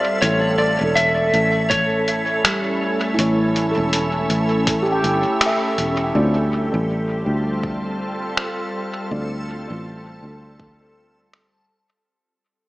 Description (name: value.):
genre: ambient dub.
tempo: 81 BPM.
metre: 4/4.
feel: swing 59% on 16ths.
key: D minor.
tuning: A4 = 440 Hz.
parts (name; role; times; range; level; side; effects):
electric slide guitar; melody; 0.0-5.4 s; C#5 to E5; -21 LUFS; equal; dub echo.
soft additive organ-like pad; sustained chords; 0.0-12.1 s; G3 to A4; -25 LUFS; equal; ensemble chorus, built-in reverb.
backwards swelling texture; texture; 0.0-12.1 s; A4; -28 LUFS; right 1 dB; built-in reverb.
dark upright piano; stabs; 0.2-9.3 s; A3 to D5; -30 LUFS; left 1 dB; low-pass filter, dub echo.
fingered electric bass; bass; 0.2-11.7 s; E1 to D2; -23 LUFS; equal; none.
lo-fi sampler-style drum kit; drums; 0.2-11.5 s; finger snaps, hi-hat; -23 LUFS; equal; overdrive, studio reverb, dub echo.
electronic kick drum; drums; 1.7-10.8 s; none; -28 LUFS; equal; studio reverb.
handpan; arpeggios; 2.4-8.6 s; G3 to G5; -24 LUFS; equal; vintage 12-bit sampler grit, dub echo.
room: moderate echo chamber reverb, RT60 2.2 s.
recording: echo-heavy mix, small speaker sound.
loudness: -17 LUFS.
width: side -19 dB against mid.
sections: 0.0-6.2 A section; 6.2-12.1 B section.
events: band accent 5.4-5.8; fade-out 6.2-12.1.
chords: 0.2 A; 6.2 Dm7.